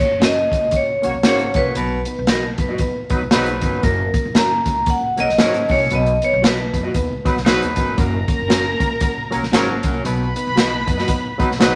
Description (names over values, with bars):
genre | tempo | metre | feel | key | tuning
uptempo 1960s-style soul | 116 BPM | 4/4 | swing 59% on 8ths | B major | A4 = 440 Hz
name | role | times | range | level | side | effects
vibraphone with hard mallets | melody | 0.0-7.7 s | A#4 to A#5 | -22 LUFS | equal | none
reed electric piano | accompaniment | 0.0-11.8 s | F#3 to C#5 | -28 LUFS | equal | none
swinging big-band drum kit | drums | 0.0-11.7 s | hi-hat, kick drum, snare drum | -22 LUFS | equal | none
upright bass | bass | 0.1-11.8 s | F#1 to F#2 | -29 LUFS | equal | none
electric guitar through a small old amp | stabs | 0.2-11.7 s | C#4 to D#5 | -28 LUFS | equal | none
clear horn section | second line | 1.0-11.8 s | F#3 to C#5 | -26 LUFS | equal | none
raspy baritone saxophone | riff | 1.2-11.8 s | F#2 to B2 | -31 LUFS | equal | none
dark studio violin section | second line | 8.0-11.8 s | A#4 to B5 | -27 LUFS | equal | none
room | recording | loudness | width
moderate studio reverb, RT60 0.8 s | none | -18 LUFS | mono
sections
0.0-11.8 A section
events
none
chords
0.0 F#; 1.8 B; 3.8 F#; 5.9 B; 8.0 F#; 10.1 B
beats
0.21 0.73 1.25 | 1.76 2.28 2.80 3.32 | 3.84 4.35 4.87 5.39 | 5.91 6.42 6.94 7.46 | 7.98 8.50 9.02 9.53 | 10.05 10.57 11.09 11.61